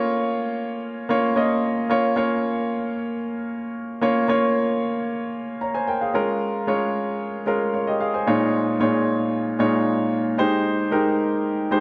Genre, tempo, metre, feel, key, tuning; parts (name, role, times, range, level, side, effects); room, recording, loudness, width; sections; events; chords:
pop; 113 BPM; 4/4; straight; Bb dorian; A4 = 440 Hz
clear grand piano; solo; 0.0-11.8 s; Bb2 to Bb5; -23 LUFS; equal
moderate lush hall reverb, RT60 2.6 s; -23 LUFS; mono
0.0-1.9 A section; 1.9-6.1 B section; 6.1-11.8 C section
0.0 Bbm; 6.1 Bbm7; 8.3 Eb9sus4/Bb; 10.4 Abmaj7